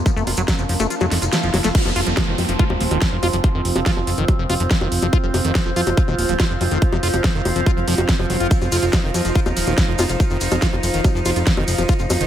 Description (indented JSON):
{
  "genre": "psychedelic trance",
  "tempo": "142 BPM",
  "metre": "4/4",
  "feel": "straight",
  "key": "unclear",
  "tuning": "A4 = 440 Hz",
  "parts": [
    { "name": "overtone-sweeping drone", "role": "sustained chords", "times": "0.0-12.3 s", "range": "F3 to Eb4", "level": "-26 LUFS", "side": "right 1 dB", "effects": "chorus, built-in reverb, sidechain pumping" },
    { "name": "fat analog bass", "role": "bass", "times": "0.0-12.3 s", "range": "Eb1 to F2", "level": "-22 LUFS", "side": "equal", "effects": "none" },
    { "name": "riser and downlifter", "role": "sound effects", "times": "0.1-5.1 s", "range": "none", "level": "-28 LUFS", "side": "right 1 dB", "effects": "none" },
    { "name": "liquid acid bass", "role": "riff", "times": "0.1-12.3 s", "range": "Eb3 to Gb4", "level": "-26 LUFS", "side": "moving between left 4 dB and right 4 dB", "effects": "chorus, auto-pan, sidechain pumping, ping-pong delay" },
    { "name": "big-room dance drum kit", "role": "drums", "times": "0.1-12.3 s", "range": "bongos, crash cymbal, hi-hat, ride cymbal, snare drum", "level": "-24 LUFS", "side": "left 1 dB", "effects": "overdrive" },
    { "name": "electronic kick drum", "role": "drums", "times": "0.1-12.0 s", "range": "none", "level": "-18 LUFS", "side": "equal", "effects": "overdrive" },
    { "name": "maracas", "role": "percussion", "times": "0.1-1.7, 8.5-12.3 s", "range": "none", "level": "-31 LUFS", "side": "left 4 dB", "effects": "none" },
    { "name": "airy breathy pad", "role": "texture", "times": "1.7-12.3 s", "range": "F4 to F5", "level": "-26 LUFS", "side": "right 2 dB", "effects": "chorus, sidechain pumping" }
  ],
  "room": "little or no reverb",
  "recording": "none",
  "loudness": "-16 LUFS",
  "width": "side -11 dB against mid",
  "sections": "0.0-1.7 A section; 1.7-12.3 B section",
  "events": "riser 0.1-1.7; kick drops out 0.9-1.7; band accent 1.3; drum fill 1.5; drop 1.7-12.3",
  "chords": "0.0 F5"
}